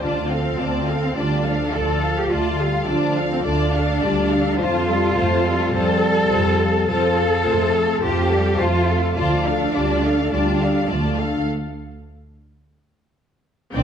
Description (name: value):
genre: cinematic, epic orchestral film score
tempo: 105 BPM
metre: 4/4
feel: straight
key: unclear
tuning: A4 = 440 Hz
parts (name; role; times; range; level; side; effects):
- rich symphonic violin section; melody; 0.0-13.8 s; F5 to A5; -31 LUFS; left 5 dB; none
- warm symphonic violin section; second line; 0.0-13.8 s; A4 to F5; -28 LUFS; left 4 dB; none
- rich symphonic viola section; accompaniment; 0.0-13.8 s; C4 to A4; -28 LUFS; right 2 dB; none
- dark French horn section; sustained chords; 0.0-13.8 s; D3 to D4; -25 LUFS; left 4 dB; none
- dark symphonic cello section; bass; 0.0-13.8 s; C2 to A4; -22 LUFS; right 1 dB; none
- rich chamber double bass section; bass; 0.0-13.8 s; C2 to F2; -23 LUFS; right 2 dB; none
room: wet recital hall reverb, RT60 1.4 s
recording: dark, warm production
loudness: -17 LUFS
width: side -8 dB against mid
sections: 0.0-13.7 A section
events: break 11.5-13.7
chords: 0.0 Dm; 4.6 F; 9.2 Dm